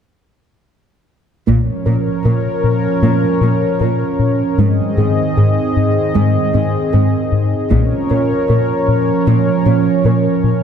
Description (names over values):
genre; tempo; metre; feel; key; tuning
cinematic, hybrid orchestral and electronic film score; 77 BPM; 4/4; straight; Bb minor; A4 = 440 Hz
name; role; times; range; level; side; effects
warm analog pad; sustained chords; 1.6-10.6 s; Eb3 to Eb5; -16 LUFS; right 2 dB; chorus
soft round pluck; arpeggios; 1.5-10.3 s; Ab3 to Bb4; -23 LUFS; right 5 dB; chorus, digital delay
rubbery square bass; riff; 1.5-10.6 s; Ab2 to Bb2; -17 LUFS; left 3 dB; none
rich symphonic cello section; bass; 1.5-10.1 s; Ab2 to Bb2; -22 LUFS; right 3 dB; none
solo taiko drums; drums; 1.5-3.0, 7.7-9.2 s; none; -20 LUFS; equal; none
room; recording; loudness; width
wet scoring stage reverb, RT60 1.5 s; dark, warm production; -12 LUFS; side -8 dB against mid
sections
1.5-10.6 A section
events
build-up 1.5-10.6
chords
1.5 Bbm; 4.6 Ab; 7.7 Bbm